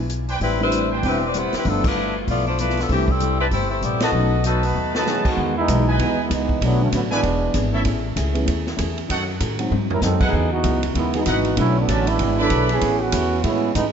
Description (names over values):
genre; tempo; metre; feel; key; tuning
jazz, big band swing; 193 BPM; 4/4; swing 60% on 8ths; E major from 5.4 s; A4 = 440 Hz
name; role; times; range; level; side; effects
upright bass; bass; 0.0-13.9 s; E1 to A2; -23 LUFS; equal; none
swinging big-band drum kit; drums; 0.1-13.8 s; crash cymbal, hi-hat, kick drum, ride cymbal, snare drum, toms; -27 LUFS; right 1 dB; none
mellow trumpet section; stabs; 0.3-1.3, 3.4-12.8 s; D4 to B5; -28 LUFS; right 2 dB; none
clear saxophone section; melody; 0.4-5.1 s; E3 to E5; -22 LUFS; left 3 dB; none
hollow-body jazz guitar; accompaniment; 0.4-13.9 s; G2 to B4; -29 LUFS; left 3 dB; none
dark grand piano; accompaniment; 0.6-13.6 s; D3 to E5; -28 LUFS; right 1 dB; none
clear trombone section; second line; 5.0-7.7, 9.9-13.8 s; D3 to A#4; -22 LUFS; right 3 dB; none
room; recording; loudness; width
moderate concert hall reverb, RT60 1.9 s; nothing above 7.7 kHz; -18 LUFS; side -7 dB against mid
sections
0.0-5.4 A section; 5.4-13.9 B section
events
band accent 1.8, 4.0; drum fill 4.8-5.1, 9.7-10.0; trombone section solo 5.4-13.9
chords
0.4 Am11; 1.6 G13; 2.9 C6; 4.1 B7; 5.4 Emaj7; 6.6 Bm7; 7.2 E7; 7.9 Amaj7; 9.1 D#m7b5; 9.7 G#7; 10.3 C#m11; 11.6 Bm7; 12.2 E7; 12.8 Amaj9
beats
0.10 | 0.41 0.72 1.03 1.34 | 1.65 1.96 2.27 2.58 | 2.89 3.20 3.51 3.82 | 4.13 4.44 4.75 5.06 | 5.37 5.68 5.99 6.30 | 6.61 6.92 7.23 7.54 | 7.86 8.16 8.47 8.79 | 9.10 9.41 9.72 10.03 | 10.34 10.65 10.96 11.27 | 11.58 11.89 12.20 12.51 | 12.82 13.13 13.44 13.75